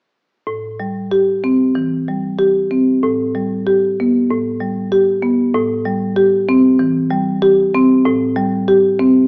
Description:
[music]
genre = classical, contemporary piece for solo marimba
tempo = 95 BPM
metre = 4/4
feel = rubato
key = A minor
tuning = A4 = 436 Hz
[part]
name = marimba with medium mallets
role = solo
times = 0.5-9.3 s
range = A2 to G4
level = -15 LUFS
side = equal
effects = none
[sound]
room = moderate recital hall reverb, RT60 1.3 s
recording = small speaker sound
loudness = -15 LUFS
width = mono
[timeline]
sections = 0.5-9.3 A section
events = none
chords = 0.5 Am7; 3.0 Gadd9/A; 5.5 Am7

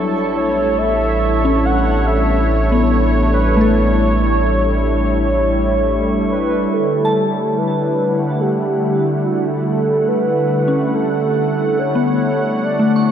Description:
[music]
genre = ambient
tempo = 71 BPM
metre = 4/4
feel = straight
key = unclear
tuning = A4 = 438 Hz
[part]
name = warm analog pad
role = sustained chords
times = 0.0-13.1 s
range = D3 to F#5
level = -18 LUFS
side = equal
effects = chorus
[part]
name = soft synth bell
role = arpeggios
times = 0.0-13.1 s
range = A3 to C#6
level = -21 LUFS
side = left 2 dB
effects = chorus, diffuse ambient delay
[part]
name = round analog bass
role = bass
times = 0.0-6.7 s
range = A1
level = -19 LUFS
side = equal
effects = none
[part]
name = glass harmonica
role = texture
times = 0.0-6.7 s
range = D4 to C#6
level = -25 LUFS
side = left 2 dB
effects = none
[part]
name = warm velvety synth lead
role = melody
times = 0.4-13.1 s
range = F#4 to F#5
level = -20 LUFS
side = right 1 dB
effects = chorus, diffuse ambient delay
[sound]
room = wet lush hall reverb, RT60 2.8 s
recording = dark, warm production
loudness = -14 LUFS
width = side -9 dB against mid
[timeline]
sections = 0.0-6.7 A section; 6.7-13.1 B section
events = none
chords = 0.0 A7; 6.7 Em11

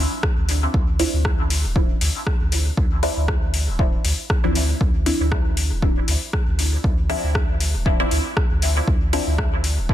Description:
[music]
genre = dub techno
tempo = 118 BPM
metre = 4/4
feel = swing 55% on 16ths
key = D minor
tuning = A4 = 440 Hz
[part]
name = soft dub sub bass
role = bass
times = 0.0-9.9 s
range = D1 to D2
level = -22 LUFS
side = equal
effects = sidechain pumping
[part]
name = deep house drum kit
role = drums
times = 0.2-9.8 s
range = hi-hat, rim click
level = -26 LUFS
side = left 1 dB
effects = overdrive, studio ambience
[part]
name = electronic kick drum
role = drums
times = 0.2-9.9 s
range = none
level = -22 LUFS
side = equal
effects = overdrive, studio ambience
[part]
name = filtered dub chord stab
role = stabs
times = 1.0-9.4 s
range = F3 to E4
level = -26 LUFS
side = equal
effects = phaser, sidechain pumping, dub echo
[sound]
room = little or no reverb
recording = dense, heavily limited modern master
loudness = -18 LUFS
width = side -12 dB against mid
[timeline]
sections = 0.0-9.9 A section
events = none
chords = 0.0 Dm9

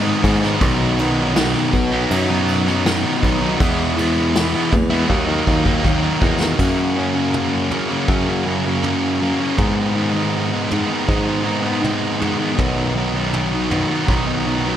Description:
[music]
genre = quiet-loud alternative rock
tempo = 80 BPM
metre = 4/4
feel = straight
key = G# minor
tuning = A4 = 440 Hz
[part]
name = thick fuzz guitar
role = riff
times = 0.0-14.8 s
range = F#2 to E4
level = -18 LUFS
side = equal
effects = distortion
[part]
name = picked electric bass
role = bass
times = 0.0-14.8 s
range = B1 to G#2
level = -22 LUFS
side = equal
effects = none
[part]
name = vintage brush drum kit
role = drums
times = 0.2-14.3 s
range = crash cymbal, kick drum, ride cymbal, snare drum, toms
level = -22 LUFS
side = equal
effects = none
[sound]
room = light reverb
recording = none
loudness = -16 LUFS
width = side -10 dB against mid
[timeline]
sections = 0.0-6.6 A section; 6.6-14.8 B section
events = drum fill 5.1-6.6; half time 6.6-14.8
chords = 0.0 G#m; 0.6 B; 3.6 E; 5.1 D#m; 6.6 F#; 9.6 G#m; 12.6 B

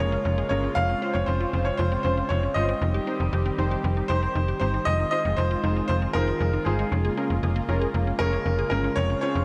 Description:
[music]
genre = pop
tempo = 117 BPM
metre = 4/4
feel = straight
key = F minor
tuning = A4 = 440 Hz
[part]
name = bright baby grand piano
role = melody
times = 0.0-9.4 s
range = Ab4 to F5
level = -30 LUFS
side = equal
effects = tape echo
[part]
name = warm analog keys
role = accompaniment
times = 0.0-9.4 s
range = Db4 to Db5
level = -35 LUFS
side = equal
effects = chorus
[part]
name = brassy analog pad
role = sustained chords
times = 0.0-9.4 s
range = Db3 to G4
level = -33 LUFS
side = equal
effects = chorus
[part]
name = resonant blip pluck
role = arpeggios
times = 0.0-9.4 s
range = Ab3 to Ab4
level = -37 LUFS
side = equal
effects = chorus, tape echo
[part]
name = slap-like FM bass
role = bass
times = 0.0-9.4 s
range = F1 to G1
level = -28 LUFS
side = equal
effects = none
[sound]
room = moderate plate reverb, RT60 2.6 s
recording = dreamy mix soaked in reverb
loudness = -25 LUFS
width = mono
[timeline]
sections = 0.0-4.9 A section; 4.9-9.4 A section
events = none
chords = 0.0 Bbm7/F; 0.8 Dbmaj7/F; 2.8 Cm/F; 4.9 Fm7; 6.9 Bbm7/F

